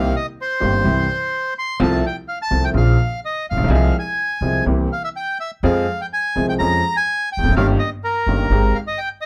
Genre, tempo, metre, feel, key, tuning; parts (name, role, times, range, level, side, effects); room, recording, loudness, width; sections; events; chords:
tango; 126 BPM; 4/4; rubato; F minor; A4 = 440 Hz
bandoneon; melody; 0.0-9.3 s; Bb4 to C6; -24 LUFS; equal
clear upright piano; accompaniment; 0.0-8.7 s; G1 to Ab4; -22 LUFS; equal
upright bass; bass; 0.0-8.7 s; E1 to F2; -22 LUFS; equal
light reverb; close, detailed microphones; -19 LUFS; mono
0.0-9.3 A section
0.0 Cm7; 0.9 C; 1.8 F/C; 2.7 Bbm; 3.7 Fm/C; 4.7 C7; 5.6 Fm; 6.6 Db/F; 7.6 Eb7/G; 8.5 Abmaj7